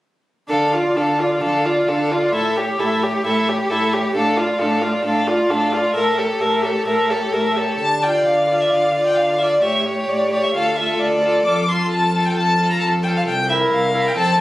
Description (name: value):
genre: quick classical-period movement for string quartet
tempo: 132 BPM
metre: 4/4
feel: straight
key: D minor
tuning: A4 = 441 Hz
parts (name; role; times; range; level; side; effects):
- clear violin; melody; 0.5-14.4 s; C#5 to D6; -21 LUFS; left 1 dB; none
- clear violin; second line; 0.5-14.4 s; F4 to D5; -20 LUFS; left 1 dB; none
- rich viola; accompaniment; 0.5-14.4 s; C4 to A4; -22 LUFS; right 1 dB; none
- rich cello; bass; 0.5-14.4 s; C2 to D3; -24 LUFS; right 1 dB; none
room: light reverb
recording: recorded on a phone in the room, club reverb, compression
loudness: -16 LUFS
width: side -16 dB against mid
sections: 0.5-7.8 A section; 7.8-14.4 B section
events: none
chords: 0.5 Dm; 2.3 A7; 4.2 Dm/A; 6.0 A7b9; 7.8 Dm; 9.6 A7; 10.5 Dm; 11.5 F; 13.3 C7